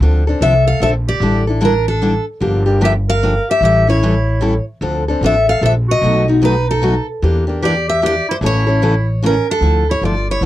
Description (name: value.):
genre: acoustic string swing (jazz manouche).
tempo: 150 BPM.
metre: 3/4.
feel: swing 62% on 8ths.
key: D minor.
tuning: A4 = 440 Hz.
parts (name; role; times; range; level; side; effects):
picked steel-string acoustic guitar; accompaniment; 0.0-10.5 s; B2 to A4; -17 LUFS; left 2 dB; none.
upright bass; bass; 0.0-10.5 s; G1 to E2; -16 LUFS; equal; none.
picked steel-string acoustic guitar; melody; 0.4-10.4 s; A4 to F5; -17 LUFS; left 1 dB; none.
clear clarinet; second line; 0.4-10.4 s; C#4 to Bb4; -22 LUFS; right 3 dB; none.
room: little or no reverb.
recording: worn, warbling old tape, cassette tape, warbly pitch drift.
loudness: -12 LUFS.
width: side -14 dB against mid.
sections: 0.0-9.6 A section.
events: none.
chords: 0.0 Dm7; 1.2 A7sus4; 2.4 Gm7; 3.6 A7; 4.8 Dm7; 6.0 B7; 7.2 Em7b5; 8.4 A; 9.6 Dmadd9.